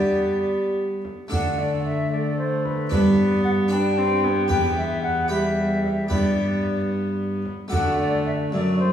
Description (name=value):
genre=classical, renaissance-style consort dance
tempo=75 BPM (dotted quarters)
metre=6/8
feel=straight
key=D major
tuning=A4 = 440 Hz
part: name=silver concert flute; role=melody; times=0.0-8.9 s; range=B4 to G5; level=-26 LUFS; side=left 2 dB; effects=none
part: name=harpsichord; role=accompaniment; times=0.0-8.9 s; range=E2 to D5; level=-25 LUFS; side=equal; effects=none
part: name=warm viola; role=accompaniment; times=0.0-8.9 s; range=G3 to D4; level=-28 LUFS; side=left 1 dB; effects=none
part: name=clear trombone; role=bass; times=0.0-8.9 s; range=E2 to G3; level=-26 LUFS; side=right 1 dB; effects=none
part: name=frame drum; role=percussion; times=1.0-8.0 s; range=none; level=-30 LUFS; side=right 1 dB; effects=none
room=wet recital hall reverb, RT60 1.7 s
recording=heard from further back in the room, small room ambience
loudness=-20 LUFS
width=side -9 dB against mid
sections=0.0-7.7 A section; 7.7-8.9 A section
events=none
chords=0.0 G; 1.3 D5; 2.9 G; 4.5 Em; 6.1 G; 7.7 D